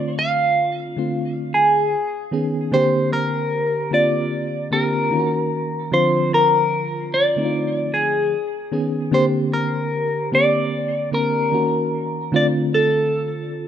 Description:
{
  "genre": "R&B",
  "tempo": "75 BPM",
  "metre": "4/4",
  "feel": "swing 63% on 16ths",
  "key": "unclear",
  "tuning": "A4 = 440 Hz",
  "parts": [
    { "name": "clean electric guitar", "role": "melody", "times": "0.0-13.7 s", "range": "Ab4 to F5", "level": "-19 LUFS", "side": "equal", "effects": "phaser" },
    { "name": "FM electric piano with auto-pan", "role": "accompaniment", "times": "0.0-13.7 s", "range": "D3 to Bb4", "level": "-22 LUFS", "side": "equal", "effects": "none" }
  ],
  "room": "moderate echo chamber reverb, RT60 2.2 s",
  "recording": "dark, warm production",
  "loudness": "-17 LUFS",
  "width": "side -9 dB against mid",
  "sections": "0.0-13.7 A section",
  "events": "none",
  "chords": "0.0 Dm7; 1.9 B69; 2.7 Bb69; 5.1 Ebm7; 5.9 Dm7; 8.3 B69; 9.1 Bb69; 11.5 Ebm7; 12.3 Dm7",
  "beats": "0.31 1.11 1.91 | 2.71 3.51 4.31 5.11 | 5.91 6.71 7.51 8.31 | 9.11 9.91 10.71 11.51 | 12.31 13.11"
}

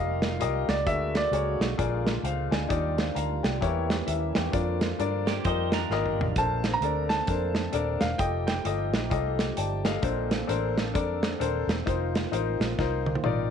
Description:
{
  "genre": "uptempo gospel",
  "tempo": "131 BPM",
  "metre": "4/4",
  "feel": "swing 61% on 8ths",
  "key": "Bb major",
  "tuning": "A4 = 440 Hz",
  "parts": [
    { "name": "clear baby grand piano", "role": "melody", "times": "0.0-2.0, 6.4-9.3 s", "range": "D5 to Bb5", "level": "-30 LUFS", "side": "right 2 dB", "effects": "none" },
    { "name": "warm upright piano", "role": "accompaniment", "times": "0.0-13.5 s", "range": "Bb2 to Bb5", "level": "-30 LUFS", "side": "left 10 dB", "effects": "none" },
    { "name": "dark French horn section", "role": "sustained chords", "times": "0.0-13.5 s", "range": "Eb3 to C5", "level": "-40 LUFS", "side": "equal", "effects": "none" },
    { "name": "percussive tonewheel organ", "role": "sustained chords", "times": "0.0-13.5 s", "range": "D3 to A4", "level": "-37 LUFS", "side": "right 9 dB", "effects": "overdrive, slow rotary speaker" },
    { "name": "vintage muted fingered electric bass", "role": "bass", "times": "0.0-13.5 s", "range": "Eb1 to G2", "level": "-31 LUFS", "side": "right 1 dB", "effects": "none" },
    { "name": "modern studio drum kit", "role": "drums", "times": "0.2-13.4 s", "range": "hi-hat, kick drum, snare drum, toms", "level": "-30 LUFS", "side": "right 2 dB", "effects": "none" },
    { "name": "clean electric guitar", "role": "second line", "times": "5.3-6.3 s", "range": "Bb3 to C5", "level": "-34 LUFS", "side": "right 10 dB", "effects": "none" }
  ],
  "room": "moderate plate reverb, RT60 1.4 s, small room ambience",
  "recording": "1960s-style stereo with parts hard left and right",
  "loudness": "-25 LUFS",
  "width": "side -7 dB against mid",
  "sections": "0.0-13.5 A section",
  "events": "drum fill 5.9-6.4, 12.8-13.5; upright piano fill 9.3-10.0",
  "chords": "0.0 F9sus4; 0.9 Bb7alt/D; 1.8 Bb7; 2.7 Ebmaj9; 3.6 Edim7; 4.5 Bb/F; 5.4 F9sus4; 6.4 Bbmaj9; 8.2 F9; 10.0 Bbmaj9; 11.9 F7sus4",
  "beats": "0.41 | 0.87 1.33 1.78 2.24 | 2.70 3.16 3.62 4.08 | 4.53 4.99 5.45 5.91 | 6.37 6.82 7.28 7.74 | 8.20 8.65 9.11 9.57 | 10.03 10.49 10.95 11.40 | 11.86 12.32 12.78 13.23"
}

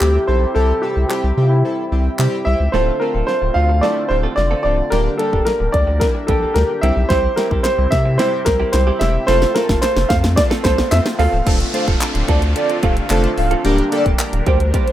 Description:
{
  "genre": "dance-pop",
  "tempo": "110 BPM",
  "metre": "4/4",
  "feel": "straight",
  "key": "unclear",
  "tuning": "A4 = 439 Hz",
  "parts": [
    { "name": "clear grand piano", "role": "melody", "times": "0.0-11.4 s", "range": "E4 to F5", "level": "-18 LUFS", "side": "equal", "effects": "plate reverb, ping-pong delay" },
    { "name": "chorused retro synth keys", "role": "accompaniment", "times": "0.0-14.9 s", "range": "G3 to C5", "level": "-24 LUFS", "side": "left 1 dB", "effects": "sidechain pumping, plate reverb" },
    { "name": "filtered supersaw swell", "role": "sustained chords", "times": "0.0-14.9 s", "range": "C3 to Bb4", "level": "-27 LUFS", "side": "equal", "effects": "sidechain pumping, plate reverb" },
    { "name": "saturated sub bass", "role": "bass", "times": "0.0-14.7 s", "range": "Db1 to C3", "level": "-17 LUFS", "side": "equal", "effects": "sidechain pumping" },
    { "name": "pop drum kit", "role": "drums", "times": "0.0-14.9 s", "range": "crash cymbal, handclaps, hi-hat, kick drum, snare drum", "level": "-20 LUFS", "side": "equal", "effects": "none" },
    { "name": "direct-recorded clean electric guitar", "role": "riff", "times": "2.7-14.9 s", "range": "G3 to A4", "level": "-25 LUFS", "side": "right 7 dB", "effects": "lush chorus" },
    { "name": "riser and downlifter", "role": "sound effects", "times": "5.6-14.9 s", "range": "none", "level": "-31 LUFS", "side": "equal", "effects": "none" },
    { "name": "group handclap", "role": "percussion", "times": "7.6-14.3 s", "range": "none", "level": "-29 LUFS", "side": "left 6 dB", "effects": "none" },
    { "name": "airy dreamy lead", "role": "melody", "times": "11.7-14.9 s", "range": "C5 to F5", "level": "-22 LUFS", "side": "right 1 dB", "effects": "chorus, sidechain pumping, ping-pong delay" }
  ],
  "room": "light reverb",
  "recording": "rough home demo mix",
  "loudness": "-14 LUFS",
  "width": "side -12 dB against mid",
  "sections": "0.0-2.7 A section; 2.7-11.5 B section; 11.5-14.9 C section",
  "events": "build-up 2.7-11.5; drum fill 2.7-11.5; drop 11.5-14.9",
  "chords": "0.0 C; 2.7 Dm7; 4.9 Gm/D; 6.8 C; 9.3 F; 11.5 Dm7; 13.6 Gm/D",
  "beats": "0.01 | 0.56 1.10 1.65 2.19 | 2.74 3.29 3.83 4.38 | 4.92 5.47 6.01 6.56 | 7.10 7.65 8.19 8.74 | 9.29 9.83 10.38 10.92 | 11.47 12.01 12.56 13.10 | 13.65 14.19 14.74"
}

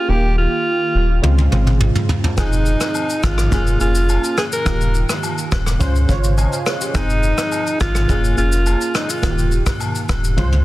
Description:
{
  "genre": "afrobeats",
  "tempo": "105 BPM",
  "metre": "4/4",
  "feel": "straight",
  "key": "unclear",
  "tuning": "A4 = 440 Hz",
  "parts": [
    { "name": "breathy alto saxophone", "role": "melody", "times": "0.0-9.7 s", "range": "Eb4 to Bb4", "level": "-21 LUFS", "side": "right 1 dB", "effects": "tape echo" },
    { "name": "warm analog keys", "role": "accompaniment", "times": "0.0-10.6 s", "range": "Db3 to Ab5", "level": "-24 LUFS", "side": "right 2 dB", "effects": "chorus" },
    { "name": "warm sub bass", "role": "bass", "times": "0.1-10.6 s", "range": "Eb1 to Db2", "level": "-17 LUFS", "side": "equal", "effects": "none" },
    { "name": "vintage brush drum kit", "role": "drums", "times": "1.2-10.6 s", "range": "kick drum, rim click, shaker, toms", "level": "-20 LUFS", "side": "equal", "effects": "none" },
    { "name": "agogo bells and woodblock", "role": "percussion", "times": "2.4-10.5 s", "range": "none", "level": "-29 LUFS", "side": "left 4 dB", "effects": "none" }
  ],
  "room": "small room ambience",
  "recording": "dense, heavily limited modern master",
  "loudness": "-15 LUFS",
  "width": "side -17 dB against mid",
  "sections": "0.0-10.6 A section",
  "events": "drum fill 1.2-2.4, 10.4; synth keys fill 5.8-6.9",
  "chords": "0.1 Ebadd9; 1.2 Dbmaj7; 2.4 Fm7; 3.5 Bbm7/F; 4.7 Ebadd9; 5.8 Dbmaj7; 6.9 Fm7; 8.1 Bbm7/F; 9.2 Ebadd9",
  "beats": "| 0.09 0.66 1.23 1.80 | 2.38 2.95 3.52 4.09 | 4.66 5.23 5.80 6.38 | 6.95 7.52 8.09 8.66 | 9.23 9.80 10.38"
}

